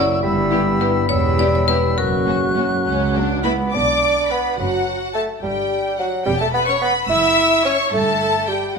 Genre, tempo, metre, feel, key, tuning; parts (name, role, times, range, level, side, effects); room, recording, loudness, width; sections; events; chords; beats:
cinematic, playful, whimsical film cue; 70 BPM (dotted quarters); 6/8; uneven beats; B minor; A4 = 440 Hz
marimba with hard mallets; melody; 0.0-2.8 s; A#4 to D5; -22 LUFS; left 4 dB
rich studio violin section; melody; 0.0-8.8 s; F#4 to E6; -25 LUFS; left 3 dB
silver concert flute; second line; 0.0-3.4 s; E6 to F#6; -26 LUFS; left 2 dB
warm oboe; second line; 0.0-3.4 s; B5 to C#6; -27 LUFS; left 1 dB
mellow bassoon; accompaniment; 0.0-8.8 s; F#3 to E4; -21 LUFS; right 1 dB
rich studio viola section; accompaniment; 0.0-8.8 s; A#3 to E5; -25 LUFS; right 1 dB
dark French horn section; sustained chords; 0.0-3.4 s; B3 to G4; -24 LUFS; left 4 dB
rich studio cello section; bass; 0.0-8.6 s; C#2 to B2; -26 LUFS; right 3 dB
rich studio double bass section; bass; 0.0-8.6 s; E1 to C#2; -26 LUFS; right 3 dB
warm studio violin section; second line; 0.5-8.8 s; C#4 to E6; -24 LUFS; left 3 dB
wet recital hall reverb, RT60 1.5 s; -16 LUFS; side -5 dB against mid
0.0-3.7 A section; 3.7-8.8 B section
0.2 G6; 1.1 Em6; 2.0 F#; 3.7 Bm; 5.4 N.C.; 6.3 A9/E; 7.1 C#madd11/F#; 7.9 Gsus2
| 0.23 1.10 | 1.99 2.86 | 3.74 4.58 | 5.42 6.26 | 7.10 7.93 | 8.78